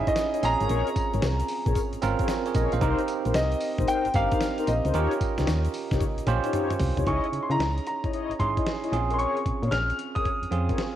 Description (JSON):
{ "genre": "R&B, new jack swing", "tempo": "113 BPM", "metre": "4/4", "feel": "swing 65% on 16ths", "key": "unclear", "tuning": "A4 = 440 Hz", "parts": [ { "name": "clear concert grand piano", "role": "melody", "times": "0.0-11.0 s", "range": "Eb5 to F6", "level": "-29 LUFS", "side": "equal", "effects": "cassette tape" }, { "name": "barky tine electric piano", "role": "accompaniment", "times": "0.0-11.0 s", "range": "C4 to F5", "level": "-30 LUFS", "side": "right 7 dB", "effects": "cassette tape" }, { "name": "solid FM bass", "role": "bass", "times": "0.0-10.7 s", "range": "G1 to Db3", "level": "-26 LUFS", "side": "equal", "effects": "none" }, { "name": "mellow synth brass", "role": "stabs", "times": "0.1-10.8 s", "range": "Eb4 to Eb5", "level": "-32 LUFS", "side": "left 8 dB", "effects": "chorus, cassette tape, tape echo" }, { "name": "dusty soul sampler-style drum kit", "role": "drums", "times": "0.1-10.9 s", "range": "hi-hat, kick drum, snare drum, tambourine, toms", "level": "-30 LUFS", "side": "equal", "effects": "cassette tape" }, { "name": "tube shaker", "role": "percussion", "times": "0.1-7.1 s", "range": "none", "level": "-54 LUFS", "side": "left 9 dB", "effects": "none" } ], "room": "light reverb", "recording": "home recording on cassette", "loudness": "-23 LUFS", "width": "side -11 dB against mid", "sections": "0.0-7.1 A section; 7.1-11.0 B section", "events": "drum fill 6.0-7.1", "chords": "0.4 Bbm7; 2.8 Cm7; 4.9 Eb7; 7.1 Dbmadd9; 8.9 Bbm7" }